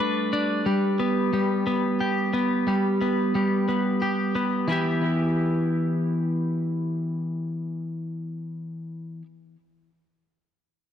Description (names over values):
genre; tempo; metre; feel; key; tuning
rock; 60 BPM (dotted quarters); 6/8; straight; E minor; A4 = 440 Hz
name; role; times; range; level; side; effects
twelve-string electric guitar; arpeggios; 0.0-9.3 s; E3 to B4; -23 LUFS; equal; analog delay
room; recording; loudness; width
moderate recital hall reverb, RT60 1.6 s, studio ambience; dark, warm production; -22 LUFS; side -9 dB against mid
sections
0.0-4.7 A section; 4.7-8.7 B section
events
none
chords
0.0 Gadd9; 0.7 G; 4.7 Em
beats
| 0.67 1.67 | 2.68 3.69 | 4.69 5.70 | 6.71 7.72